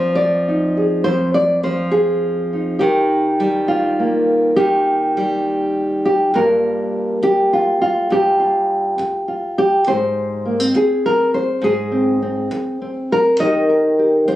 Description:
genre	folk, solo fingerstyle acoustic guitar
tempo	68 BPM (dotted quarters)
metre	6/8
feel	straight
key	unclear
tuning	A4 = 440 Hz
part	nylon-string guitar	solo	0.0-14.4 s	F2 to Eb5	-15 LUFS	equal	none
room	moderate studio ambience, RT60 0.5 s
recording	recorded on a phone in the room, studio reverb, faint mains hum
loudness	-15 LUFS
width	side -14 dB against mid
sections	0.0-6.3 A section; 6.3-14.4 B section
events	none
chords	0.0 Fm7; 2.8 Eb; 6.3 Gm7; 9.9 Ab; 13.4 Eb

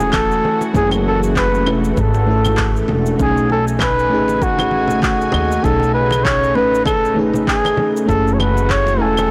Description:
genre	sunset chillout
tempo	98 BPM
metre	4/4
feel	swing 56% on 16ths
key	F# dorian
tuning	A4 = 439 Hz
part	warm flugelhorn	melody	0.0-9.3 s	F#4 to C#5	-20 LUFS	equal	tape echo
part	mellow FM electric piano	accompaniment	0.0-9.3 s	A3 to G#5	-23 LUFS	equal	chorus
part	lush unison pad	sustained chords	0.0-9.3 s	C#3 to G#5	-28 LUFS	equal	chorus
part	upright bass	bass	0.0-9.3 s	E1 to D#2	-23 LUFS	equal	tube saturation
part	electronic cabasa, handclaps and claves	drums	0.0-9.3 s	none	-26 LUFS	equal	none
part	congas	percussion	0.0-9.3 s	none	-28 LUFS	equal	none
part	electronic kick drum	drums	0.1-8.8 s	none	-24 LUFS	equal	none
room	light reverb, small room ambience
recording	blown-out, overdriven recording, overdrive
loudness	-16 LUFS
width	mono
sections	0.0-9.3 A section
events	none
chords	0.0 F#m7; 3.2 B13; 8.1 F#m7

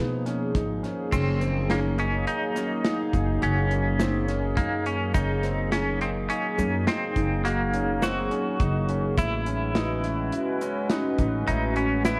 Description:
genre	progressive instrumental, band music in an uneven meter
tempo	104 BPM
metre	7/4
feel	straight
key	unclear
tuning	A4 = 445 Hz
part	dark analog pad	accompaniment	0.0-12.2 s	F3 to Cb5	-31 LUFS	equal	chorus, phaser
part	clear concert grand piano	arpeggios	0.0-12.2 s	B3 to Gb4	-35 LUFS	equal	slapback echo
part	upright bass	bass	0.0-12.2 s	Gb1 to B2	-30 LUFS	equal	none
part	modern studio drum kit	drums	0.3-12.2 s	crash cymbal, hi-hat, kick drum, snare drum	-32 LUFS	equal	none
part	clean electric guitar	second line	1.1-12.2 s	Bb3 to Gb4	-32 LUFS	equal	tremolo
part	egg shaker	percussion	1.1-12.2 s	none	-51 LUFS	equal	none
room	light reverb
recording	none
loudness	-26 LUFS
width	mono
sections	0.0-1.1 A section; 1.1-12.2 B section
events	none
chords	0.0 B; 1.1 Gb; 9.2 A

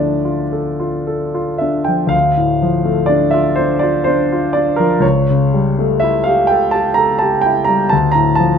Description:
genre	classical, romantic nocturne for solo piano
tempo	62 BPM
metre	3/4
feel	rubato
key	D minor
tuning	A4 = 440 Hz
part	clear concert grand piano	solo	0.0-8.6 s	C#2 to Bb5	-12 LUFS	equal	none
room	light reverb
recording	close, detailed microphones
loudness	-13 LUFS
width	side -7 dB against mid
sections	0.0-2.1 A section; 2.1-8.6 A section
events	none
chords	0.0 Dm; 5.0 A7/C#; 7.9 Dm

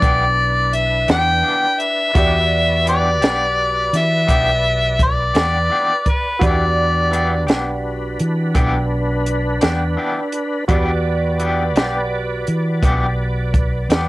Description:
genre	slow blues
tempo	56 BPM (dotted quarters)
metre	12/8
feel	straight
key	E minor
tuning	A4 = 437 Hz
part	mellow harmonica	melody	0.0-7.5 s	B4 to G5	-17 LUFS	left 1 dB	none
part	bright upright piano	accompaniment	0.0-14.1 s	E4 to D5	-27 LUFS	right 3 dB	plate reverb
part	electric guitar at the edge of break-up	accompaniment	0.0-14.1 s	E3 to G4	-23 LUFS	left 2 dB	tremolo
part	overdriven tonewheel organ	sustained chords	0.0-14.1 s	D4 to D5	-26 LUFS	right 1 dB	slow rotary speaker, chorus vibrato
part	fingered electric bass	bass	0.0-14.1 s	B1 to E3	-20 LUFS	equal	none
part	compact cocktail drum kit	drums	0.0-14.1 s	hi-hat, kick drum, snare drum	-18 LUFS	equal	cassette tape
room	little or no reverb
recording	home recording on cassette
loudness	-15 LUFS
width	side -19 dB against mid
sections	0.0-14.1 A section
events	none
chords	0.0 Em7

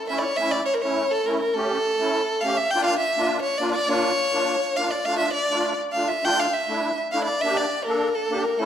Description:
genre	klezmer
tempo	102 BPM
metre	2/4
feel	straight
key	A phrygian dominant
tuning	A4 = 439 Hz
part	warm violin	melody	0.0-8.7 s	A4 to G5	-22 LUFS	equal	none
part	musette accordion	accompaniment	0.1-8.7 s	A3 to A4	-26 LUFS	equal	none
room	wet recital hall reverb, RT60 1.5 s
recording	none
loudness	-21 LUFS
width	side -9 dB against mid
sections	0.4-8.7 A section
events	none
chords	0.4 A; 2.7 Bb; 5.1 Dm; 7.4 Gm

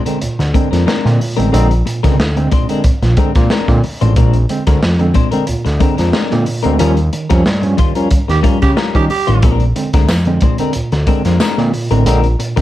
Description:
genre	funk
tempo	91 BPM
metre	4/4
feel	straight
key	Bb mixolydian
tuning	A4 = 440 Hz
part	clean electric guitar	accompaniment	0.0-12.6 s	G3 to C5	-19 LUFS	left 7 dB	wide subtle chorus
part	overdriven tine electric piano	stabs	0.1-12.6 s	Bb2 to Db4	-19 LUFS	right 3 dB	fast tremolo
part	crunchy breakbeat drum kit	drums	0.1-12.6 s	hi-hat, kick drum, snare drum	-16 LUFS	equal	none
part	fat analog bass	bass	0.2-12.6 s	A1 to Eb3	-14 LUFS	equal	none
part	growling tenor saxophone	second line	8.3-9.5 s	G4	-19 LUFS	right 6 dB	none
part	tambourine	percussion	10.1-11.6 s	none	-31 LUFS	left 6 dB	none
room	light reverb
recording	dark, warm production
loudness	-11 LUFS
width	side -14 dB against mid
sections	0.0-12.6 A section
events	band accent 6.8-9.4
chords	0.0 Bb9; 6.8 Eb9; 9.4 Bb9

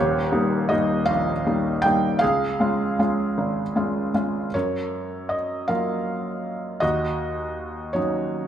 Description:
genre	classical, lyrical solo piano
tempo	53 BPM (dotted quarters)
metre	6/8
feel	rubato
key	Db lydian, Gb major from 4.5 s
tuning	A4 = 439 Hz
part	felt-muted upright piano	solo	0.0-8.5 s	Eb1 to G5	-21 LUFS	equal	none
room	moderate scoring stage reverb, RT60 1.8 s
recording	minimal, uncompressed stereo recording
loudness	-21 LUFS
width	side -10 dB against mid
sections	0.0-4.5 A section; 4.5-8.5 B section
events	none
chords	0.0 Eb; 2.2 Db; 4.5 Gbmaj7; 6.8 Ebm7

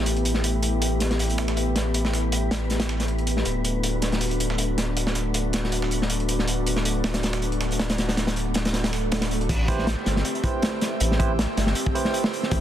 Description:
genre	drum and bass, jungle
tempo	159 BPM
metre	4/4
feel	swing 54% on 16ths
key	A dorian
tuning	A4 = 441 Hz
part	airy breathy pad	sustained chords	0.0-12.6 s	A3 to G4	-29 LUFS	left 1 dB	chorus
part	saturated sub bass	bass	0.0-12.6 s	D1 to A1	-26 LUFS	equal	none
part	wind-like tuned noise texture	texture	0.0-12.6 s	B3 to E5	-34 LUFS	left 2 dB	built-in reverb
part	crunchy breakbeat drum kit	drums	0.1-12.6 s	crash cymbal, hi-hat, kick drum, snare drum	-26 LUFS	equal	high-pass filter on kick, high-pass filter on hats, high-pass filter on cymbals, high-pass filter on snare, high-pass filter on room
part	dusty soul sampler-style drum kit	drums	0.1-9.5 s	hi-hat, snare drum	-34 LUFS	right 2 dB	high-pass filter on hats, high-pass filter on snare
part	swell	sound effects	8.9-9.5 s	none	-33 LUFS	right 5 dB	none
part	barky tine electric piano	stabs	9.7-12.6 s	E4 to C5	-29 LUFS	right 6 dB	dub echo
room	light reverb, small room ambience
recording	dense, heavily limited modern master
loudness	-22 LUFS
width	side -11 dB against mid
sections	0.0-9.5 A section; 9.5-12.6 B section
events	filter sweep on analog synth pad 0.0-9.5; swell 8.9-9.5; drop 9.5-12.6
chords	0.0 Asus2; 3.5 D; 9.5 Am9

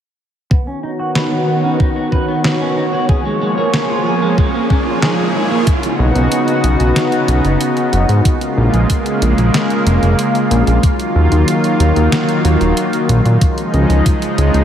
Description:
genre	synthwave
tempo	93 BPM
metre	4/4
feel	straight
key	unclear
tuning	A4 = 440 Hz
part	lush unison pad	sustained chords	0.5-14.6 s	C#3 to C#5	-15 LUFS	equal	chorus, sidechain pumping
part	clean electric guitar	arpeggios	0.5-5.6 s	Ab3 to B4	-23 LUFS	right 2 dB	lush chorus, low-pass filter, diffuse ambient delay
part	electronic kick drum	drums	0.5-14.2 s	none	-14 LUFS	equal	none
part	riser	sound effects	3.3-5.7 s	none	-27 LUFS	right 2 dB	none
part	detuned 8-bit digital drum machine	drums	1.2-14.6 s	hi-hat, snare drum	-23 LUFS	equal	none
part	fat analog bass	bass	6.0-14.6 s	Eb1 to Bb2	-12 LUFS	equal	none
room	wet cathedral reverb, RT60 6.1 s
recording	dreamy mix soaked in reverb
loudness	-12 LUFS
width	side -9 dB against mid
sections	0.5-5.7 A section; 5.7-14.6 B section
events	filter sweep on analog synth pad 0.5-5.7; filter sweep on clean electric guitar 0.5-5.7; riser 3.3-5.7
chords	0.5 Badd9; 3.1 Bbm7; 5.7 Badd9; 8.3 Bbm7; 10.8 Ebmadd9; 13.4 Dbadd9

